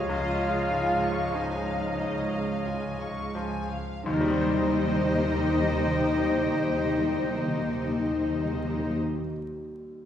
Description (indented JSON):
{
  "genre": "cinematic, emotional film score for orchestra",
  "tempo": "42-50 BPM",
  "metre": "3/4",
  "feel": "rubato",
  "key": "Eb major",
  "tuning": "A4 = 439 Hz",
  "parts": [
    { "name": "muted symphonic violin section", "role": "melody", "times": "0.0-9.0 s", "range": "Eb5 to F5", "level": "-37 LUFS", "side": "left 3 dB", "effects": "none" },
    { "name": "clear oboe", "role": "second line", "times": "0.0-9.0 s", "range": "Eb5 to G5", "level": "-39 LUFS", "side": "right 1 dB", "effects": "none" },
    { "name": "mellow clarinet", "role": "second line", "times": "0.0-9.0 s", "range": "C5 to Db5", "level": "-36 LUFS", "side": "right 1 dB", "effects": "none" },
    { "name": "muted studio violin section", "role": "second line", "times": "0.0-9.0 s", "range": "C5 to Db6", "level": "-39 LUFS", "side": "left 3 dB", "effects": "none" },
    { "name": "bright grand piano", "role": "accompaniment", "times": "0.0-10.1 s", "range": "Db2 to C5", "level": "-36 LUFS", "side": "left 2 dB", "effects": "none" },
    { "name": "muted symphonic viola section", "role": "accompaniment", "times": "0.0-9.0 s", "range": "Ab3 to G4", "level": "-38 LUFS", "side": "right 1 dB", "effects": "none" },
    { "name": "warm French horn section", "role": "sustained chords", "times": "0.0-9.0 s", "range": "F3 to C5", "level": "-39 LUFS", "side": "left 2 dB", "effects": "none" },
    { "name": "concert harp", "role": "arpeggios", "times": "0.0-9.3 s", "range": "Db3 to C5", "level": "-35 LUFS", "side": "left 2 dB", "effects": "none" },
    { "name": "muted symphonic cello section", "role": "bass", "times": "0.0-9.0 s", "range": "Eb4 to F4", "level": "-30 LUFS", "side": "left 2 dB", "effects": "none" },
    { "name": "muted symphonic double bass section", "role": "bass", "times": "0.0-9.0 s", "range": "Db2 to Eb2", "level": "-34 LUFS", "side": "right 2 dB", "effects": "none" },
    { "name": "large flute ensemble", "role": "second line", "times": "0.1-9.0 s", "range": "Eb5 to F5", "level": "-34 LUFS", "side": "left 1 dB", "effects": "none" },
    { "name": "timpani", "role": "percussion", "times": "4.1-9.0 s", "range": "Eb3", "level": "-31 LUFS", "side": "equal", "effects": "none" }
  ],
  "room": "wet scoring stage reverb, RT60 1.5 s",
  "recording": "heard from further back in the room, vinyl crackle",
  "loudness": "-25 LUFS",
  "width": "side -10 dB against mid",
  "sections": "0.0-4.1 A section; 4.1-8.3 B section",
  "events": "slowing down 0.0-4.1",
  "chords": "0.0 Dbadd9; 4.1 Eb6"
}